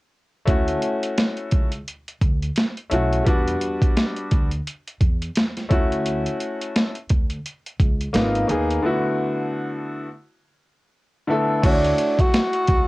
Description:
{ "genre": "hip hop, jazz-hop", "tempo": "86 BPM", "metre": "4/4", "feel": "swing 58% on 16ths", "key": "D major", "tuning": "A4 = 439 Hz", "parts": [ { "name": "clear upright piano", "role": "accompaniment", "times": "0.5-12.9 s", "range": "D3 to C#5", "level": "-22 LUFS", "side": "left 1 dB", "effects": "cassette tape" }, { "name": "upright bass", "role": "bass", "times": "0.5-12.9 s", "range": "G#1 to E2", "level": "-26 LUFS", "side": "equal", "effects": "none" }, { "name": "boom bap sampler-style drum kit", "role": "drums", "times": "0.5-12.9 s", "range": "crash cymbal, hi-hat, kick drum, snare drum", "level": "-20 LUFS", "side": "equal", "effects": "overdrive" }, { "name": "breathy tenor saxophone", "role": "melody", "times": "11.7-12.9 s", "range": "D4 to F#4", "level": "-20 LUFS", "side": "right 1 dB", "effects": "cassette tape" } ], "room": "moderate booth ambience, RT60 0.3 s", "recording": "home recording on cassette", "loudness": "-19 LUFS", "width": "side -20 dB against mid", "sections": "0.5-11.6 A section; 11.6-12.9 B section", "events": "break 8.8-11.6", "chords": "0.5 Dmaj7; 3.3 Em7; 5.7 Dmaj7; 8.1 G#m6; 8.8 D69; 11.6 Dmaj7" }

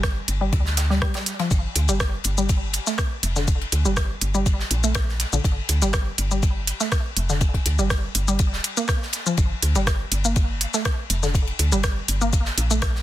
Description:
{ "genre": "minimal techno", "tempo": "122 BPM", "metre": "4/4", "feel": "straight", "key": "G minor", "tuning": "A4 = 440 Hz", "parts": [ { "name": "woody FM bass", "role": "bass", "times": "0.0-13.0 s", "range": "D1 to D2", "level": "-23 LUFS", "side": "equal", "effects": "sidechain pumping" }, { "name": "electronic kick drum", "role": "drums", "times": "0.0-12.9 s", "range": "none", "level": "-22 LUFS", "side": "equal", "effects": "none" }, { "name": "minimal click drum kit", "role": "drums", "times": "0.0-12.9 s", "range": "hi-hat, rim click, shaker", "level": "-25 LUFS", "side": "equal", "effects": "soft clipping on snare" }, { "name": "modern studio drum kit", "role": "drums", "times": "0.0-13.0 s", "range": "ride cymbal, snare drum", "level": "-31 LUFS", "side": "left 3 dB", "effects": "high-pass filter on cymbals, high-pass filter on snare, high-pass filter on room" }, { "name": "resonant blip pluck", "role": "riff", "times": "0.4-12.7 s", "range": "D3 to Bb3", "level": "-28 LUFS", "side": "equal", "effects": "chorus, sidechain pumping, dub echo" } ], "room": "light reverb", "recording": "dense, heavily limited modern master", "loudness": "-20 LUFS", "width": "side -14 dB against mid", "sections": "0.0-13.0 A section", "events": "none", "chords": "0.0 G5" }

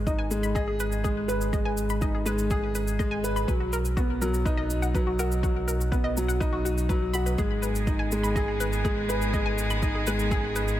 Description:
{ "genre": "piano and strings electronica", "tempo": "123 BPM", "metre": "4/4", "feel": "straight", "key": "G# minor", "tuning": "A4 = 439 Hz", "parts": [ { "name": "warm upright piano", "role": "riff", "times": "0.0-10.8 s", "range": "F#3 to B4", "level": "-28 LUFS", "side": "equal", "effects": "ping-pong delay" }, { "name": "round analog bass", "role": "bass", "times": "0.0-10.8 s", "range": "G#1 to B1", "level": "-29 LUFS", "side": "equal", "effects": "sidechain pumping" }, { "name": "analog pluck", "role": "arpeggios", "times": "0.1-10.6 s", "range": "F#4 to B5", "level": "-34 LUFS", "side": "left 2 dB", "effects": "chorus, sidechain pumping, ping-pong delay" }, { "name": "electronic kick drum", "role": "drums", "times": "0.1-10.4 s", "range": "none", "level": "-29 LUFS", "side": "equal", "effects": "none" }, { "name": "shaker", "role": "drums", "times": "0.1-10.8 s", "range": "none", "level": "-39 LUFS", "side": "right 1 dB", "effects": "none" }, { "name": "rich string quartet", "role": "sustained chords", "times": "7.4-10.8 s", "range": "D#3 to G#4", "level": "-32 LUFS", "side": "equal", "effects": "sidechain pumping" } ], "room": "light reverb", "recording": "none", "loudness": "-24 LUFS", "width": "side -13 dB against mid", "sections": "0.0-10.8 A section", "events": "none", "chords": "0.0 G#m; 3.5 B; 7.4 G#m" }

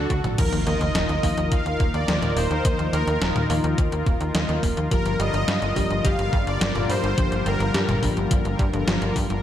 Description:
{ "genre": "synthwave", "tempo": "106 BPM", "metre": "4/4", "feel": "straight", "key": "G minor", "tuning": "A4 = 439 Hz", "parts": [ { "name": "soft supersaw", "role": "melody", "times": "0.0-8.0 s", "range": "F#4 to F5", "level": "-28 LUFS", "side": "equal", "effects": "ping-pong delay" }, { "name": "brassy analog pad", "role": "sustained chords", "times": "0.0-9.4 s", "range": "D3 to Bb4", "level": "-29 LUFS", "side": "left 1 dB", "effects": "chorus, tremolo, sidechain pumping" }, { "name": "analog pluck", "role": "arpeggios", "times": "0.0-9.4 s", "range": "F3 to Eb5", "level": "-32 LUFS", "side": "right 1 dB", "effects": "chorus, ping-pong delay" }, { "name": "tight sequencer bass", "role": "bass", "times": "0.0-9.4 s", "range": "Eb1 to G2", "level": "-26 LUFS", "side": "equal", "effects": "sidechain pumping" }, { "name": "electronic kick drum", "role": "drums", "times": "0.1-9.3 s", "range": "none", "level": "-24 LUFS", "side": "equal", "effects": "overdrive" }, { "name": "gated 80s digital drum machine", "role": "drums", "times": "0.1-9.4 s", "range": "crash cymbal, hi-hat, snare drum, toms", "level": "-28 LUFS", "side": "equal", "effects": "gated reverb, gated reverb snare, overdrive" }, { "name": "FM electric piano with soft pad layer", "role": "stabs", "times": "0.4-9.4 s", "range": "D3 to Bb4", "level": "-31 LUFS", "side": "left 4 dB", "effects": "chorus, tremolo, ping-pong delay" }, { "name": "impact", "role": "sound effects", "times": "0.4-2.6 s", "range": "none", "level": "-33 LUFS", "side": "equal", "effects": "none" } ], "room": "light reverb, digital ambience", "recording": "none", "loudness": "-20 LUFS", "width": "side -11 dB against mid", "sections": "0.4-9.4 A section", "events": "drum fill 0.1; impact 0.4-2.6", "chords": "0.4 Ebsus2; 4.9 Gm7" }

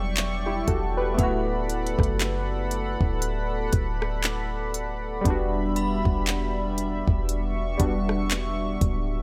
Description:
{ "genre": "contemporary R&B", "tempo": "59 BPM", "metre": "4/4", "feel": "swing 58% on 16ths", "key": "unclear", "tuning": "A4 = 442 Hz", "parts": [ { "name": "warm analog keys", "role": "accompaniment", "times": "0.0-9.2 s", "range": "G3 to B4", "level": "-31 LUFS", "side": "equal", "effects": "chorus" }, { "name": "chorused pulse-width pad", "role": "sustained chords", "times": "0.0-9.2 s", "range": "G3 to C#6", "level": "-34 LUFS", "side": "equal", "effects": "sidechain pumping" }, { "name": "warm 808-style bass", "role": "bass", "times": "0.0-9.2 s", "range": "D1 to F#1", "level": "-31 LUFS", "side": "equal", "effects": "none" }, { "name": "synth chime", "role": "texture", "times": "0.0-8.2 s", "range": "F#5 to B5", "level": "-41 LUFS", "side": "equal", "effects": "ensemble chorus, digital delay" }, { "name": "smooth R&B drum kit", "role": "drums", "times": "0.2-9.1 s", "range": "handclaps, hi-hat, kick drum, rim click", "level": "-28 LUFS", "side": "equal", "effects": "none" } ], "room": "little or no reverb", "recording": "none", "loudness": "-26 LUFS", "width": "mono", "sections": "0.0-9.2 A section", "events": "none", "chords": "0.0 Em7; 1.2 D6; 5.3 Em7" }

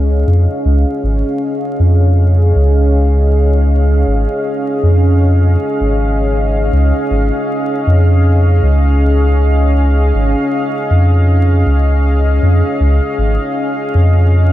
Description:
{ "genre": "ambient dub", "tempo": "79 BPM", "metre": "4/4", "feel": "swing 58% on 16ths", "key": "Db major", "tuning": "A4 = 444 Hz", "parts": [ { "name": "deep dark ambient pad", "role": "sustained chords", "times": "0.0-14.5 s", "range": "Db4 to F5", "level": "-16 LUFS", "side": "equal", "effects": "chorus, built-in reverb" }, { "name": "round analog bass", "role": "bass", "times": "0.0-14.5 s", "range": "Ab1 to F2", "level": "-10 LUFS", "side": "equal", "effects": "tube saturation" } ], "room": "digital ambience", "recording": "vinyl crackle", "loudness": "-10 LUFS", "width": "side -14 dB against mid", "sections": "0.0-14.5 A section", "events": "none", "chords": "0.0 Db" }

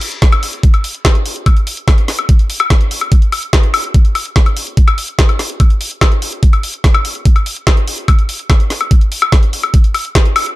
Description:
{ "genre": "trance", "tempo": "145 BPM", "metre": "4/4", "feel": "straight", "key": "none", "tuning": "none", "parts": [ { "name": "drum and bass drum kit", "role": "drums", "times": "0.0-10.5 s", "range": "hi-hat, snare drum, woodblock", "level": "-16 LUFS", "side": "left 2 dB", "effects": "overdrive" }, { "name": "electronic kick drum", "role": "drums", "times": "0.2-10.2 s", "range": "none", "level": "-9 LUFS", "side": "equal", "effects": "overdrive" } ], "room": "digital ambience", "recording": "dark, warm production", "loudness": "-10 LUFS", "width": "side -18 dB against mid", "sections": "0.0-10.6 A section", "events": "none", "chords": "none" }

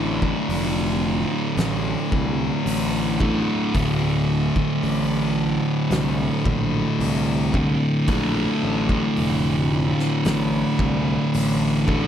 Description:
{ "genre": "stoner and doom metal", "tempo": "55 BPM", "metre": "4/4", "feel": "straight", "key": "D minor", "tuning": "A4 = 439 Hz", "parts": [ { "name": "thick fuzz guitar", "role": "riff", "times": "0.0-12.1 s", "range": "D2 to D3", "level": "-21 LUFS", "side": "equal", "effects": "distortion" }, { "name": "fuzz picked electric bass", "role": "bass", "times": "0.0-12.1 s", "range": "D1 to C2", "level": "-26 LUFS", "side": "equal", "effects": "overdrive" }, { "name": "oversized low-tuned drum kit", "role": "drums", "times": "0.2-12.1 s", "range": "hi-hat, kick drum, snare drum", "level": "-28 LUFS", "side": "equal", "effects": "none" } ], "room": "little or no reverb", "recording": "none", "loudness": "-19 LUFS", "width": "side -9 dB against mid", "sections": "0.0-12.1 A section", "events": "none", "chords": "0.0 Dm" }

